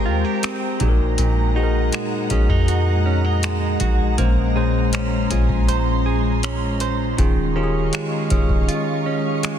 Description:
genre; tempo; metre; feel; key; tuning
contemporary R&B; 80 BPM; 4/4; straight; unclear; A4 = 437 Hz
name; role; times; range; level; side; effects
bell-like tine electric piano; accompaniment; 0.0-9.6 s; Bb2 to C5; -24 LUFS; left 4 dB; none
ethereal airy pad; sustained chords; 0.0-9.6 s; Ab3 to Db6; -26 LUFS; equal; ensemble chorus, built-in reverb, sidechain pumping
direct-recorded clean electric guitar; arpeggios; 0.0-9.6 s; Bb2 to C5; -26 LUFS; right 7 dB; ping-pong delay
soft 808-style bass; bass; 0.0-8.7 s; Eb1 to F2; -21 LUFS; equal; none
booming analog drum machine; drums; 0.4-9.6 s; finger snaps, hi-hat, kick drum; -21 LUFS; equal; soft clipping on snare
room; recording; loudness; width
light reverb, digital ambience; dense, heavily limited modern master; -17 LUFS; side -9 dB against mid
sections
0.0-9.6 A section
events
kick muted 8.7-9.6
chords
0.0 Abmaj9; 0.8 Gb69/Bb; 4.2 Bbm9; 7.2 Eb9sus4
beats
0.43 | 1.18 1.93 2.68 3.43 | 4.18 4.93 5.68 6.43 | 7.18 7.93 8.68 9.43

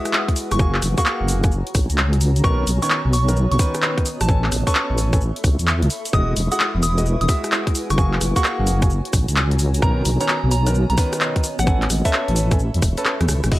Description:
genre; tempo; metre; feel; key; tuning
UK garage, two-step garage; 130 BPM; 4/4; swing 66% on 16ths; unclear; A4 = 442 Hz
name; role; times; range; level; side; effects
warm grand piano; stabs; 0.0-13.6 s; D#3 to A5; -26 LUFS; equal; dub echo
granular cloud pad; texture; 0.0-13.6 s; B3 to C#6; -31 LUFS; right 1 dB; built-in reverb, sidechain pumping
punchy analog drum machine; drums; 0.1-13.6 s; cabasa, crash cymbal, handclaps, hi-hat, rim click; -23 LUFS; equal; none
electronic kick drum; drums; 0.3-13.6 s; none; -18 LUFS; equal; overdrive
soft synth bell; melody; 0.5-12.2 s; E5 to D#6; -27 LUFS; right 1 dB; chorus, digital delay
deep soft wobble bass; bass; 0.5-13.6 s; E1 to E2; -19 LUFS; equal; chorus, sidechain pumping
room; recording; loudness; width
light reverb; vinyl crackle; -16 LUFS; side -17 dB against mid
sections
0.0-13.5 A section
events
drop 0.0-13.5; drum fill 13.1-13.5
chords
0.0 Eadd9; 0.6 F#add9; 2.4 Bmaj9; 4.1 Amaj9; 6.1 Emaj9; 8.0 F#add9; 9.8 Bmaj9; 11.4 Amaj9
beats
0.13 | 0.59 1.05 1.52 1.98 | 2.44 2.90 3.36 3.83 | 4.29 4.75 5.21 5.67 | 6.13 6.59 7.05 7.52 | 7.98 8.44 8.90 9.36 | 9.82 10.29 10.75 11.21 | 11.67 12.13 12.59 13.05 | 13.52

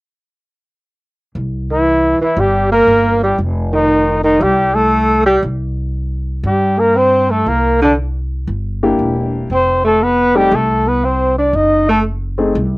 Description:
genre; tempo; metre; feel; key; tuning
jazz, small-group swing and bop; 118 BPM; 4/4; swing 67% on 8ths; C major; A4 = 436 Hz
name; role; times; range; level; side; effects
upright bass; bass; 1.4-12.8 s; E1 to G2; -19 LUFS; equal; none
breathy trumpet; melody; 1.7-12.0 s; D4 to D#5; -14 LUFS; left 1 dB; cassette tape
mellow alto saxophone; second line; 1.7-12.0 s; D3 to D#4; -15 LUFS; right 2 dB; none
dark grand piano; accompaniment; 8.8-12.5 s; A3 to Ab4; -16 LUFS; left 2 dB; none
room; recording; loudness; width
light reverb; home recording on cassette; -12 LUFS; side -22 dB against mid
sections
1.4-12.8 A section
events
none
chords
1.4 C7; 3.4 F7; 5.4 C9; 9.5 F; 11.5 F#dim7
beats
| 1.35 1.86 2.37 2.88 | 3.39 3.90 4.41 4.91 | 5.42 5.93 6.44 6.95 | 7.46 7.97 8.48 8.99 | 9.50 10.01 10.51 11.02 | 11.53 12.04 12.55

